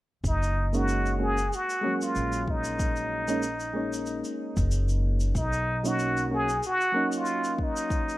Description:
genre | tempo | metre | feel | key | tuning
sunset chillout | 94 BPM | 4/4 | swing 55% on 16ths | F# major | A4 = 440 Hz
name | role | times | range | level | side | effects
upright bass | bass | 0.2-6.6 s | F#1 to B1 | -29 LUFS | equal | none
electronic kick drum | drums | 0.2-8.0 s | none | -29 LUFS | equal | none
shaker | drums | 0.2-8.2 s | none | -41 LUFS | left 1 dB | none
trumpet with plunger mute | melody | 0.3-8.2 s | D#4 to G#4 | -28 LUFS | equal | tape echo
soft electric-piano-like synth keys | accompaniment | 0.7-8.2 s | F#3 to F#4 | -31 LUFS | right 1 dB | chorus, auto-pan
room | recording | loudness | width
small room ambience | rough home demo mix | -25 LUFS | side -16 dB against mid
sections
0.2-8.2 A section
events
none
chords
0.2 F#69; 5.4 Bmaj7

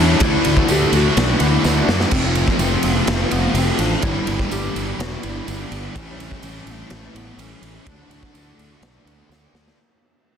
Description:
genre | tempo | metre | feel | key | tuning
rock, shoegaze and dream pop | 126 BPM | 4/4 | straight | unclear | A4 = 440 Hz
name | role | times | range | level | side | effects
soft struck synth lead | melody | 0.0-9.3 s | A3 to G4 | -26 LUFS | left 2 dB | chorus, tape echo
string machine, violas | sustained chords | 0.0-9.8 s | E4 to C#6 | -31 LUFS | left 1 dB | none
overdriven electric guitar | riff | 0.0-9.8 s | G2 to F#4 | -26 LUFS | right 10 dB | reverse reverb
overdriven semi-hollow guitar | riff | 0.0-9.8 s | G2 to F#4 | -26 LUFS | left 12 dB | ensemble chorus
tight distorted guitar | riff | 0.0-9.8 s | F2 to D4 | -26 LUFS | left 1 dB | distortion
fuzz fingered electric bass | bass | 0.0-9.7 s | E1 to F#2 | -22 LUFS | equal | overdrive
raw garage drum kit | drums | 0.2-9.8 s | crash cymbal, kick drum, ride cymbal, snare drum | -22 LUFS | equal | none
tambourine | percussion | 0.7-9.4 s | none | -35 LUFS | right 7 dB | none
room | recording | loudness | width
light reverb, studio reverb | dense, heavily limited modern master | -16 LUFS | side -8 dB against mid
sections
0.0-9.8 A section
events
fade-out 0.0-9.8; drum fill 1.6-2.1, 9.3-9.8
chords
0.2 Dmaj9; 2.1 Fmaj7; 4.0 G6; 5.9 A7; 7.9 Dmaj9

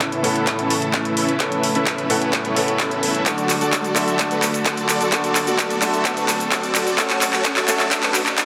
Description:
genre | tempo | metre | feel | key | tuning
EDM, festival progressive house | 129 BPM | 4/4 | straight | A major | A4 = 443 Hz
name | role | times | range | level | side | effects
bright concert grand piano | accompaniment | 0.0-8.4 s | A2 to A4 | -26 LUFS | equal | sidechain pumping, digital delay
clear symphonic string section | sustained chords | 0.0-8.4 s | C#3 to B4 | -31 LUFS | equal | sidechain pumping
dense compressed supersaw | riff | 0.0-8.4 s | C#4 to F#5 | -26 LUFS | equal | sidechain pumping, low-pass filter, digital delay
electronic kick drum | drums | 0.0-8.4 s | none | -25 LUFS | equal | overdrive, high-pass filter on kick
house drum kit | drums | 0.0-8.4 s | handclaps, hi-hat, shaker | -24 LUFS | equal | none
riser | sound effects | 0.7-8.4 s | none | -35 LUFS | equal | none
room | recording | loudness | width
wet digital room reverb, RT60 1.1 s, digital ambience | dense, heavily limited modern master, high-pass filter | -19 LUFS | mono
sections
0.0-8.4 A section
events
build-up 0.0-8.4; drum fill 0.0-8.4; filter sweep on supersaw synth 0.0-8.4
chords
0.0 Aadd9; 3.3 D; 7.0 F#m

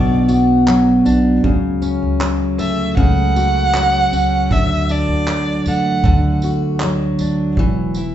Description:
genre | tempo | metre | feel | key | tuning
acoustic pop | 78 BPM | 4/4 | straight | D major | A4 = 442 Hz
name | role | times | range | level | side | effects
warm violin | melody | 0.0-6.4 s | D5 to F#5 | -19 LUFS | right 3 dB | none
picked steel-string acoustic guitar | accompaniment | 0.0-8.1 s | B2 to F#4 | -16 LUFS | equal | none
upright bass | bass | 0.0-8.1 s | E1 to E2 | -21 LUFS | equal | none
soft brush drum kit | drums | 0.3-8.1 s | handclaps, kick drum, tambourine | -21 LUFS | right 1 dB | none
room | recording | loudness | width
wet large studio reverb, RT60 0.9 s | band playing live in one room, nothing above 7.9 kHz | -13 LUFS | side -11 dB against mid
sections
0.0-8.1 A section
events
none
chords
0.0 Bm; 1.4 F#m/C#; 4.5 D; 7.6 Esus2

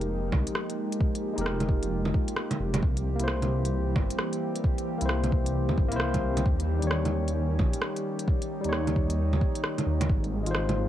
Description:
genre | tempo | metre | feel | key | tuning
future garage | 132 BPM | 4/4 | swing 63% on 16ths | F minor | A4 = 440 Hz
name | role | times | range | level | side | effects
overdriven tine electric piano | accompaniment | 0.0-10.9 s | G3 to Db5 | -33 LUFS | left 2 dB | sidechain pumping, analog delay
warbly tape-like pad | sustained chords | 0.0-10.9 s | Eb3 to G4 | -33 LUFS | right 1 dB | chorus, built-in reverb, sidechain pumping
dark detuned saw bass | bass | 0.0-10.9 s | F1 to E2 | -28 LUFS | equal | sidechain pumping
organic electronic drum kit | drums | 0.0-10.8 s | bongos, hi-hat, rim click | -31 LUFS | right 2 dB | none
electronic kick drum | drums | 0.3-10.2 s | none | -26 LUFS | equal | none
room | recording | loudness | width
light reverb, digital ambience | cassette tape | -25 LUFS | side -12 dB against mid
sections
0.0-10.9 A section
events
none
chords
0.0 Fm11; 2.8 C7; 6.5 Eb7; 10.1 Ab6

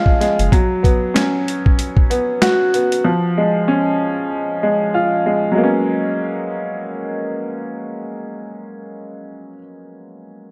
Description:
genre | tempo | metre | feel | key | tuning
hip hop, boom-bap hip-hop | 95 BPM | 4/4 | swing 57% on 16ths | G# dorian | A4 = 439 Hz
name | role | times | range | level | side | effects
warm upright piano | accompaniment | 0.0-10.5 s | E#3 to F#4 | -20 LUFS | equal | cassette tape, high-pass filter, low-pass filter
boom bap sampler-style drum kit | drums | 0.1-3.0 s | hi-hat, kick drum, snare drum | -18 LUFS | equal | none
sub bass with octave | bass | 0.4-0.5 s | F#1 | -19 LUFS | equal | none
room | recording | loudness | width
light reverb, small room ambience | dark, warm production | -17 LUFS | mono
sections
0.0-5.6 A section; 5.6-8.1 B section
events
none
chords
0.0 D#m11 (rootless); 0.5 F#sus4; 3.0 C#/E#; 5.6 G#m11

